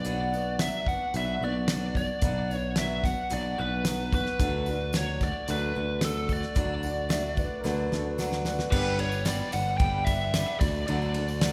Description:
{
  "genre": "folk rock and heartland rock",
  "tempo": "111 BPM",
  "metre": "4/4",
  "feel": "straight",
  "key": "D major",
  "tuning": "A4 = 440 Hz",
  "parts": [
    { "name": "biting lead guitar", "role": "melody", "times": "0.0-11.5 s", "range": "A4 to G5", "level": "-34 LUFS", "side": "equal", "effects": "overdrive" },
    { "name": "picked steel-string acoustic guitar", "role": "accompaniment", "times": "0.0-11.5 s", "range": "G2 to G4", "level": "-36 LUFS", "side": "equal", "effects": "none" },
    { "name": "picked electric bass", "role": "bass", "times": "0.0-11.5 s", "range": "G1 to D2", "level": "-34 LUFS", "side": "equal", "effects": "none" },
    { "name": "damped 70s drum kit", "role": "drums", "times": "0.0-11.5 s", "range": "crash cymbal, hi-hat, kick drum, ride cymbal, snare drum", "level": "-32 LUFS", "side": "equal", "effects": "none" },
    { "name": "tambourine", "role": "percussion", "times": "0.1-11.5 s", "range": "none", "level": "-50 LUFS", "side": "equal", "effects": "none" },
    { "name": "warm upright piano", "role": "second line", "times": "7.1-8.7 s", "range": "A4 to E5", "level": "-38 LUFS", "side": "equal", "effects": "none" }
  ],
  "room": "wet recital hall reverb, RT60 1.6 s",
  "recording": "recorded in a church or concert hall",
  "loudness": "-28 LUFS",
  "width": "mono",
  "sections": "0.0-8.7 A section; 8.7-11.5 B section",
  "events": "drum fill 7.6-8.7",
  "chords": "0.0 Bm; 4.4 D; 8.7 G; 10.6 D"
}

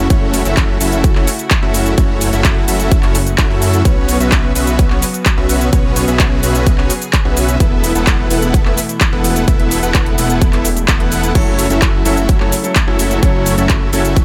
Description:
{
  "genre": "EDM, festival progressive house",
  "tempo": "128 BPM",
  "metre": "4/4",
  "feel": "straight",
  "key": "F# minor",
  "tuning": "A4 = 441 Hz",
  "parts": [
    { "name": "lush unison pad", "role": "sustained chords", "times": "0.0-14.2 s", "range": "B2 to G#4", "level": "-25 LUFS", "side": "equal", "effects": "chorus, sidechain pumping" },
    { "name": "dense compressed supersaw", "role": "riff", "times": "0.0-14.2 s", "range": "B3 to F#5", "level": "-20 LUFS", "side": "equal", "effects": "sidechain pumping, dub echo" },
    { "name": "detuned saw bass", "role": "bass", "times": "0.0-14.2 s", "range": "E1 to F#2", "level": "-21 LUFS", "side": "equal", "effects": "chorus, sidechain pumping" },
    { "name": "big-room dance drum kit", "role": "drums", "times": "0.1-14.2 s", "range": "crash cymbal, handclaps, hi-hat, shaker", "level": "-22 LUFS", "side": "equal", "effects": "overdrive" },
    { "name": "electronic kick drum", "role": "drums", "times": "0.1-14.2 s", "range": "none", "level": "-16 LUFS", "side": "equal", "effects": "overdrive" },
    { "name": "warm concert grand piano", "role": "accompaniment", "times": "11.3-14.0 s", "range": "F#3 to A4", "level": "-23 LUFS", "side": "equal", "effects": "sidechain pumping, dub echo" }
  ],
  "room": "digital ambience",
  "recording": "none",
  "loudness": "-14 LUFS",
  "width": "mono",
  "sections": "0.0-14.2 A section",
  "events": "none",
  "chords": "0.0 F#m7; 3.9 Bsus2; 7.6 Esus4; 11.4 F#m7"
}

